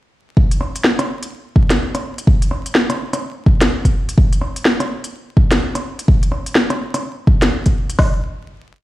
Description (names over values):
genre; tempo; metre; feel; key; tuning
future garage; 126 BPM; 4/4; swing 62% on 16ths; none; none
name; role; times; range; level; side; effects
organic electronic drum kit; drums; 0.4-8.1 s; hi-hat, kick drum, snare drum; -13 LUFS; equal; none
organic electronic drum kit; drums; 0.5-8.0 s; hi-hat, rim click, snare drum; -18 LUFS; equal; none
room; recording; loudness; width
light reverb; played on a big sound system in a bare room, large studio reverb, vinyl crackle; -14 LUFS; side -16 dB against mid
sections
0.4-8.0 groove; 8.0-8.8 final hit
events
none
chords
none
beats
| 0.36 0.84 1.32 1.79 | 2.27 2.75 3.22 3.70 | 4.17 4.65 5.13 5.60 | 6.08 6.55 7.03 7.51 | 7.98